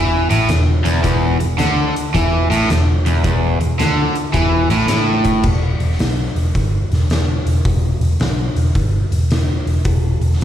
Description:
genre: blues rock power trio and southern rock.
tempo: 109 BPM.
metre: 4/4.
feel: swing 66% on 8ths.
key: E minor.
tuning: A4 = 442 Hz.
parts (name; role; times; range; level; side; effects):
crunchy overdriven guitar; riff; 0.0-5.4 s; E2 to E3; -16 LUFS; equal; slapback echo.
vintage muted picked electric bass; bass; 0.0-10.4 s; E1 to E2; -17 LUFS; equal; none.
oversized low-tuned drum kit; drums; 0.3-10.4 s; crash cymbal, hi-hat, kick drum, snare drum; -20 LUFS; equal; none.
room: studio reverb.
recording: live gig heard through the venue's PA, recital hall reverb.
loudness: -14 LUFS.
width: side -10 dB against mid.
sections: 0.0-5.4 A section; 5.4-10.4 B section.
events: none.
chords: 0.0 E7sus4; 5.4 N.C..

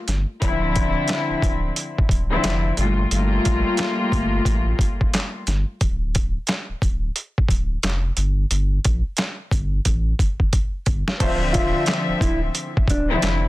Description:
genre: hip hop, boom-bap hip-hop.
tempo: 89 BPM.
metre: 4/4.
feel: swing 61% on 16ths.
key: D minor.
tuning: A4 = 439 Hz.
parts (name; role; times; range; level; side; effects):
saturated sub bass; bass; 0.1-13.5 s; D1 to Bb1; -22 LUFS; equal; none.
boom bap sampler-style drum kit; drums; 0.1-13.4 s; crash cymbal, handclaps, hi-hat, kick drum, snare drum; -21 LUFS; equal; overdrive.
clear studio string section; accompaniment; 0.4-5.3, 11.2-13.5 s; Bb2 to E5; -23 LUFS; left 2 dB; high-pass filter, low-pass filter.
warm horn section; stabs; 11.2-11.4 s; A3 to C5; -31 LUFS; right 2 dB; high-pass filter, low-pass filter, tape echo.
mellow electric guitar; melody; 11.5-13.1 s; D4 to F4; -26 LUFS; equal; high-pass filter, low-pass filter, tape echo.
room: little or no reverb.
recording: dense, heavily limited modern master.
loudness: -19 LUFS.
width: side -17 dB against mid.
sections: 0.0-11.2 A section; 11.2-13.5 B section.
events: drum fill 9.9-11.2.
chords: 0.4 Dm9; 2.8 Gm9; 5.8 N.C.; 11.2 Dm9.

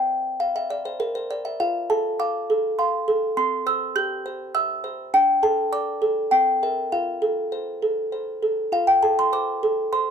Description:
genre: classical, lullaby for music box.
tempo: 101 BPM.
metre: 3/4.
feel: straight.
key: F major.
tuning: A4 = 437 Hz.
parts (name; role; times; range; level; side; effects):
music box; solo; 0.0-10.1 s; C4 to G6; -20 LUFS; equal; none.
room: light reverb.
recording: dark, warm production.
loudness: -20 LUFS.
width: side -7 dB against mid.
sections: 0.0-8.7 A section; 8.7-10.1 A section.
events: none.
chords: 0.0 C; 1.6 F; 3.4 C; 5.1 D5; 6.3 C7; 6.9 F.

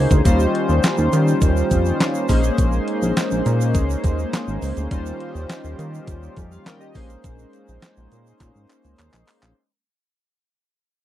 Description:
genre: early-eighties boogie funk.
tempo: 103 BPM.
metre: 4/4.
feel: straight.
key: Bb dorian.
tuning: A4 = 440 Hz.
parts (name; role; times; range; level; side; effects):
chorused polysynth; accompaniment; 0.0-9.5 s; G3 to G5; -24 LUFS; left 2 dB; none.
chorused synth bass; bass; 0.0-9.5 s; Ab1 to Eb3; -20 LUFS; equal; none.
crisp 8-bit digital drum machine; drums; 0.1-9.6 s; handclaps, hi-hat, kick drum, snare drum; -20 LUFS; equal; none.
egg shaker; percussion; 0.1-9.6 s; none; -38 LUFS; right 23 dB; none.
brassy analog pad; sustained chords; 0.3-9.5 s; Eb3 to C5; -28 LUFS; right 2 dB; chorus.
room: little or no reverb.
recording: dry, close 1970s-style studio recording.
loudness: -17 LUFS.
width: side -12 dB against mid.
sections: 0.0-9.6 A section.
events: fade-out 0.0-9.6; drum fill 8.4-9.6.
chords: 0.3 Eb13; 2.3 Bbm11; 4.9 Eb13; 7.0 Bbm11.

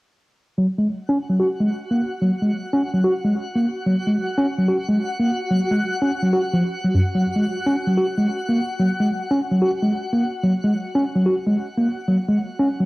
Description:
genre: IDM.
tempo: 146 BPM.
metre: 4/4.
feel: straight.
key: F# major.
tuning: A4 = 442 Hz.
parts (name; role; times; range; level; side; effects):
mellow tine electric piano; arpeggios; 0.6-12.9 s; F#2 to F#4; -18 LUFS; equal; low-pass filter, tape echo.
twinkling granular texture; texture; 1.7-12.9 s; F#4 to F#5; -29 LUFS; left 1 dB; built-in reverb.
room: moderate spring reverb, RT60 1.3 s.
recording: home recording on cassette.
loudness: -18 LUFS.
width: side -21 dB against mid.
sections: 0.6-12.9 A section.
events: filter sweep on tine electric piano 0.6-12.9.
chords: none.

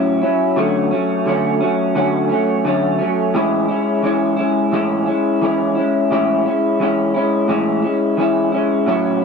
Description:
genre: indie pop.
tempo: 87 BPM.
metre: 4/4.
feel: straight.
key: A major.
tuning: A4 = 440 Hz.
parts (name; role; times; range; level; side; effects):
electric guitar through a small old amp; solo; 0.0-9.2 s; A2 to E4; -15 LUFS; equal; lush chorus, vibrato effect.
room: light reverb, digital ambience.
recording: none.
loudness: -15 LUFS.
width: side -5 dB against mid.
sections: 0.0-3.3 A section; 3.3-9.2 B section.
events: none.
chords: 0.0 F#m7/A; 0.6 Dmaj7; 3.3 Amaj7.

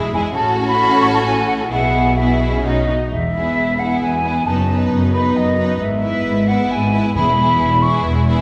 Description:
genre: quick classical-period movement for symphony orchestra.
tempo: 134 BPM.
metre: 3/4.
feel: rubato.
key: E major.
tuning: A4 = 439 Hz.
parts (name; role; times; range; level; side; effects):
clear studio violin section; melody; 0.0-8.4 s; F#4 to B4; -29 LUFS; equal; none.
clear studio violin section; second line; 0.0-8.4 s; D#4 to F#4; -27 LUFS; equal; none.
rich studio viola section; accompaniment; 0.0-8.4 s; G#3 to D#4; -24 LUFS; equal; none.
concert flute; second line; 0.1-8.0 s; D#5 to C#6; -21 LUFS; equal; none.
clear studio cello section; bass; 0.1-8.4 s; E2 to B2; -24 LUFS; equal; none.
clear studio double bass section; bass; 0.1-8.4 s; E1 to B1; -25 LUFS; equal; none.
timpani; percussion; 7.2-7.8 s; E2; -27 LUFS; equal; none.
room: wet scoring stage reverb, RT60 1.8 s.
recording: recorded in a church or concert hall.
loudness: -17 LUFS.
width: mono.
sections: 0.0-3.1 A section; 3.1-8.4 B section.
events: none.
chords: 0.4 F#m/A; 1.7 E/B; 2.7 B; 3.1 E; 4.5 B7/F#; 5.8 E/G#; 7.2 E.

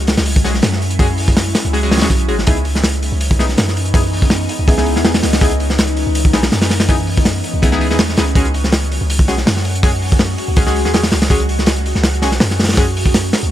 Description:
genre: drum and bass, jungle.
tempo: 163 BPM.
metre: 4/4.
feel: swing 53% on 16ths.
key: unclear.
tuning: A4 = 442 Hz.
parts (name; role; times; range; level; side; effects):
ethereal airy pad; sustained chords; 0.0-13.5 s; E3 to F#4; -23 LUFS; equal; ensemble chorus, built-in reverb, phaser.
long sustained 808-style bass; bass; 0.0-13.5 s; G#1 to F#2; -18 LUFS; equal; none.
crunchy breakbeat drum kit; drums; 0.0-13.5 s; hi-hat, kick drum, snare drum; -14 LUFS; equal; none.
deep mellow chord stab; stabs; 0.4-12.8 s; G#3 to G#4; -22 LUFS; left 2 dB; chorus, dub echo.
room: small room ambience.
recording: none.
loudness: -12 LUFS.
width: side -12 dB against mid.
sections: 0.0-13.5 A section.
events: none.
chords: 0.0 F#sus2; 2.5 C#m9; 8.4 F#sus2.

